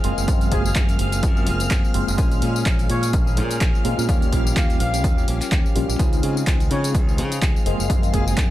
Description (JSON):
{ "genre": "filtered disco house", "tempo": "126 BPM", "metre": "4/4", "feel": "swing 56% on 16ths", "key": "unclear", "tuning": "A4 = 440 Hz", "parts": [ { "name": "tine electric piano", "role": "accompaniment", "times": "0.0-8.5 s", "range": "G3 to C5", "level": "-28 LUFS", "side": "equal", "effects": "overdrive, fast stereo tremolo, phaser, vintage 12-bit sampler grit, sidechain pumping" }, { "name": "string machine, full ensemble", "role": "sustained chords", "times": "0.0-8.5 s", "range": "F5 to F6", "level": "-32 LUFS", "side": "equal", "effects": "ensemble chorus, sidechain pumping" }, { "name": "direct-recorded clean electric guitar", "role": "riff", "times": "0.0-8.5 s", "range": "F3 to Ab4", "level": "-31 LUFS", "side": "left 3 dB", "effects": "sidechain pumping" }, { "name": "modern bright fingered electric bass", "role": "bass", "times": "0.0-8.5 s", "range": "Gb1 to Db3", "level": "-24 LUFS", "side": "equal", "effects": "tube saturation, sidechain pumping" }, { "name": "punchy analog drum machine", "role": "drums", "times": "0.0-8.5 s", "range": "handclaps, hi-hat, tambourine", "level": "-28 LUFS", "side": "left 1 dB", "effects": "overdrive, sidechain pumping on hats, sidechain pumping on perc" }, { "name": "electronic kick drum", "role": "drums", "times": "0.3-8.5 s", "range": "none", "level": "-20 LUFS", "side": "equal", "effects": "overdrive" }, { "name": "mellow trumpet section", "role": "melody", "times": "0.5-8.3 s", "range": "Ab4 to F5", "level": "-30 LUFS", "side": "left 1 dB", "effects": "sidechain pumping, tape echo" } ], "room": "little or no reverb", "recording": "none", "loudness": "-17 LUFS", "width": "side -14 dB against mid", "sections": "0.0-8.5 A section", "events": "none", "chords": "0.0 Gbmaj9#11; 2.2 Bbm7; 4.1 Eb9; 6.0 Dbmaj7; 7.7 Gbmaj9#11" }